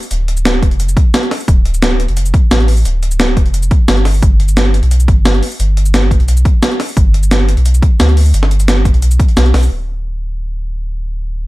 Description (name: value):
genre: liquid drum and bass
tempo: 175 BPM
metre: 4/4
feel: straight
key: unclear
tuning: A4 = 440 Hz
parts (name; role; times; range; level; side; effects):
- breakbeat sampler-style drum kit; drums; 0.0-9.7 s; hi-hat, shaker, snare drum; -15 LUFS; equal; overdrive
- sub bass with octave; bass; 0.1-11.5 s; D1 to D2; -12 LUFS; equal; none
- electronic kick drum; drums; 0.6-9.3 s; none; -10 LUFS; equal; overdrive
room: little or no reverb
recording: dark, warm production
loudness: -9 LUFS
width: side -19 dB against mid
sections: 0.0-9.7 A section; 9.7-11.5 B section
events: drop 0.0-9.7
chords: none